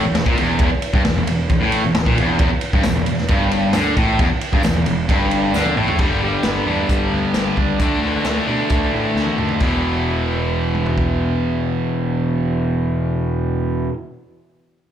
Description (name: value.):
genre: classic rock.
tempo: 133 BPM.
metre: 4/4.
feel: straight.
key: E minor.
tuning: A4 = 440 Hz.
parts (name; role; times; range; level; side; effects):
cranked stack guitar; riff; 0.0-13.9 s; E2 to D4; -20 LUFS; left 4 dB; overdrive.
distorted electric guitar; riff; 0.0-13.9 s; E2 to G4; -23 LUFS; right 12 dB; overdrive, slapback echo.
fuzz picked electric bass; bass; 0.0-13.9 s; E1 to B2; -25 LUFS; equal; overdrive.
vintage drum kit; drums; 0.1-11.1 s; crash cymbal, hi-hat, kick drum, ride cymbal, snare drum, toms; -20 LUFS; equal; none.
tambourine; percussion; 2.8-5.6 s; none; -39 LUFS; right 7 dB; none.
room: light reverb, small room ambience.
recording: live gig heard through the venue's PA, club reverb.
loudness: -16 LUFS.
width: side -10 dB against mid.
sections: 0.0-6.0 A section; 6.0-9.6 B section; 9.6-13.2 C section.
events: drum fill 5.5-6.0, 9.2-9.6.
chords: 0.0 Em; 6.0 G; 7.8 Dadd9; 9.6 E5.